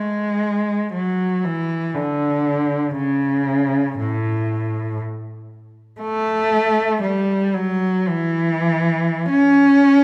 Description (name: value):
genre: classical, free, expressive piece for unaccompanied cello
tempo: 46-62 BPM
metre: 3/4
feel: rubato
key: unclear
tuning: A4 = 440 Hz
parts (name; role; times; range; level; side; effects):
- rich cello; solo; 0.0-10.0 s; A2 to C#4; -19 LUFS; equal; none
room: wet recital hall reverb, RT60 1.7 s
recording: none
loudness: -20 LUFS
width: mono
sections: 0.0-10.0 A section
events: none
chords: none